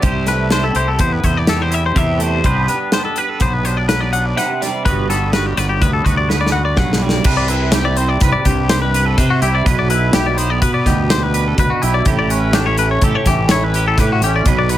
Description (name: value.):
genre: math rock and midwest emo.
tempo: 125 BPM.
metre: 5/4.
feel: straight.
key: unclear.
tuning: A4 = 437 Hz.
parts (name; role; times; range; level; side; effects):
twangy electric guitar; accompaniment; 0.0-14.8 s; G2 to D5; -21 LUFS; right 7 dB; ensemble chorus.
twangy electric guitar; arpeggios; 0.0-14.8 s; F#4 to F#5; -19 LUFS; left 5 dB; wide subtle chorus.
fuzz fingered electric bass; bass; 0.0-14.8 s; G1 to C3; -18 LUFS; equal; overdrive.
modern studio drum kit; drums; 0.0-14.8 s; crash cymbal, hi-hat, kick drum, snare drum; -18 LUFS; equal; none.
room: little or no reverb.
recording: none.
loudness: -13 LUFS.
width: side -13 dB against mid.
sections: 0.0-7.3 A section; 7.3-14.8 B section.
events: drum fill 6.3-7.3.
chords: 0.0 Am9/C; 2.4 Csus2; 4.8 Gmaj7; 7.3 Cmaj9; 9.7 G6/B; 12.1 A9.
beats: | 0.04 0.52 1.00 1.48 1.96 | 2.44 2.92 3.40 3.89 4.37 | 4.85 5.33 5.81 6.29 6.77 | 7.25 7.74 8.22 8.70 9.18 | 9.66 10.14 10.62 11.10 11.58 | 12.06 12.54 13.02 13.50 13.98 | 14.46.